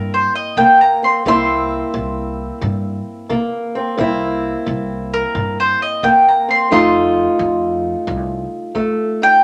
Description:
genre	acoustic country blues, solo or duo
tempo	88 BPM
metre	4/4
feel	swing 66% on 8ths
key	C mixolydian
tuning	A4 = 440 Hz
part	mandolin	melody	0.0-9.4 s	Bb4 to C6	-16 LUFS	equal	none
part	fingerpicked old ladder-braced acoustic guitar	accompaniment	0.0-9.4 s	F2 to F4	-21 LUFS	equal	none
part	upright bass	bass	0.0-8.4 s	C2 to G2	-28 LUFS	equal	none
part	kick drum	drums	0.6-9.0 s	none	-39 LUFS	equal	none
room	moderate large studio reverb, RT60 0.9 s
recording	none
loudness	-16 LUFS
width	mono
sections	0.0-9.4 A section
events	mandolin solo 0.0-9.4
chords	0.0 C7; 6.7 F7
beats	0.58 | 1.26 1.95 2.63 3.31 | 3.99 4.67 5.36 6.04 | 6.72 7.40 8.08 8.76

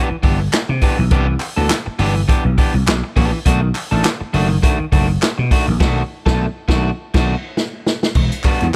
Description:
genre	funk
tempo	102 BPM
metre	4/4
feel	swing 56% on 16ths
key	unclear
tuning	A4 = 440 Hz
part	electric guitar at the edge of break-up	accompaniment	0.0-8.8 s	D#3 to A4	-24 LUFS	equal	tube saturation
part	vintage slap bass	bass	0.1-8.7 s	E1 to C3	-20 LUFS	equal	none
part	vintage drum kit	drums	0.2-8.8 s	crash cymbal, handclaps, hi-hat, kick drum, snare drum	-20 LUFS	equal	none
part	group handclap	percussion	0.5-8.6 s	none	-30 LUFS	equal	none
room	small room ambience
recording	none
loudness	-17 LUFS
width	mono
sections	0.0-8.2 A section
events	band accent 5.8-8.2; drum fill 7.0-8.2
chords	0.0 Cmaj9; 3.5 B7#9; 8.2 Em9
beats	0.53 | 1.12 1.70 2.29 2.88 | 3.46 4.05 4.63 5.22 | 5.81 6.39 6.98 7.57 | 8.15 8.74

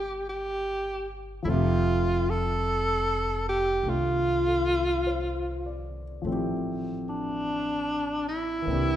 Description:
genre	jazz ballad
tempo	50 BPM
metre	4/4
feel	swing 67% on 8ths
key	F major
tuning	A4 = 440 Hz
part	breathy alto saxophone	melody	0.0-9.0 s	D4 to A4	-27 LUFS	right 1 dB	none
part	warm grand piano	accompaniment	0.0-9.0 s	C3 to E5	-32 LUFS	left 1 dB	none
part	upright bass	bass	0.0-9.0 s	F1 to C2	-31 LUFS	equal	none
room	moderate recital hall reverb, RT60 1.5 s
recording	minimal, uncompressed stereo recording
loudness	-25 LUFS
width	side -11 dB against mid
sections	0.0-9.0 A section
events	none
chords	0.0 C5; 1.4 Fmaj9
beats	0.26 | 1.45 2.65 3.84 5.04 | 6.24 7.45 8.66

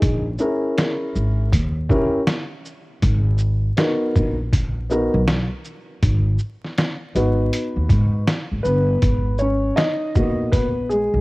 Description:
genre	hip hop, jazz-hop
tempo	80 BPM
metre	4/4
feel	swing 63% on 16ths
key	G# minor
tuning	A4 = 439 Hz
part	dark concert grand piano	accompaniment	0.0-11.2 s	G#3 to D#5	-21 LUFS	equal	cassette tape
part	upright bass	bass	0.0-11.2 s	G1 to G#2	-20 LUFS	equal	none
part	trip hop sampler-style drum kit	drums	0.0-11.1 s	hi-hat, kick drum, shaker, snare drum	-20 LUFS	equal	cassette tape
room	studio reverb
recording	home recording on cassette, vinyl crackle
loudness	-18 LUFS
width	side -22 dB against mid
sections	0.0-9.0 A section; 9.0-11.2 A section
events	grand piano solo 9.0-11.2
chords	0.0 A#m7b5; 1.5 D#7b9; 3.0 G#m9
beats	| 0.02 0.77 1.52 2.27 | 3.02 3.77 4.52 5.27 | 6.02 6.77 7.52 8.27 | 9.02 9.77 10.52

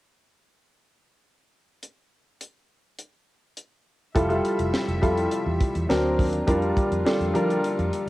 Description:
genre	polished 1980s jazz-funk pop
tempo	103 BPM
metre	4/4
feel	straight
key	F major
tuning	A4 = 441 Hz
part	tight funk drum kit	drums	1.8-8.1 s	hi-hat, kick drum, snare drum	-26 LUFS	equal	cassette tape
part	warm grand piano	accompaniment	4.1-8.1 s	F#3 to A#4	-23 LUFS	equal	analog chorus, cassette tape
part	muted studio string section	sustained chords	4.2-8.1 s	C3 to E5	-37 LUFS	right 1 dB	cassette tape
part	vintage muted fingered electric bass	bass	4.2-7.9 s	F1 to F3	-28 LUFS	equal	none
room	light reverb, studio reverb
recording	home recording on cassette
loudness	-21 LUFS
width	side -17 dB against mid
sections	1.8-4.2 A section; 4.2-8.1 B section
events	none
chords	1.8 N.C.; 4.2 Fmaj9; 5.9 D7alt; 6.5 Gm7/F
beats	| 1.83 2.41 2.99 3.57 | 4.15 4.73 5.31 5.89 | 6.48 7.06 7.64

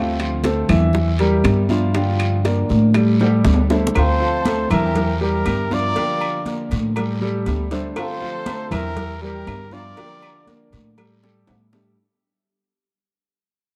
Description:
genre	latin, Cuban son and guajira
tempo	120 BPM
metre	4/4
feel	straight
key	D minor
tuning	A4 = 441 Hz
part	nylon-string guitar	accompaniment	0.0-12.0 s	D3 to G4	-30 LUFS	equal	none
part	warm grand piano	arpeggios	0.0-11.9 s	E3 to F5	-26 LUFS	equal	none
part	upright bass	bass	0.0-11.9 s	D2 to A2	-22 LUFS	equal	none
part	congas	percussion	0.2-12.0 s	none	-28 LUFS	equal	none
part	timbales and agogo bells	percussion	0.2-11.8 s	none	-34 LUFS	equal	none
part	bongos and cowbell	percussion	0.4-12.0 s	none	-30 LUFS	equal	none
part	guiro	percussion	0.4-12.0 s	none	-40 LUFS	equal	none
part	claves	percussion	0.7-11.2 s	none	-36 LUFS	equal	none
part	rich studio violin section	second line	3.9-10.5 s	G4 to Bb4	-38 LUFS	equal	none
part	breathy trumpet	melody	4.0-10.5 s	Bb4 to D5	-27 LUFS	equal	none
room	light reverb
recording	dark, warm production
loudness	-19 LUFS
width	mono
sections	0.0-4.0 A section; 4.0-12.0 B section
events	drum fill 3.2-4.0, 11.2-12.0; fade-out 4.0-12.0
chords	0.0 Dm7; 0.9 Em7b5; 1.9 Gm9; 3.0 A7sus4; 4.0 Dm7; 5.0 Em7b5; 6.0 Gm9; 7.0 A7sus4; 8.0 Dm7; 9.0 Em7b5; 10.0 Gm9; 11.0 A7sus4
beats	0.44 0.94 1.45 | 1.95 2.45 2.95 3.45 | 3.95 4.46 4.96 5.46 | 5.96 6.46 6.96 7.46 | 7.97 8.47 8.97 9.47 | 9.97 10.48 10.98 11.48

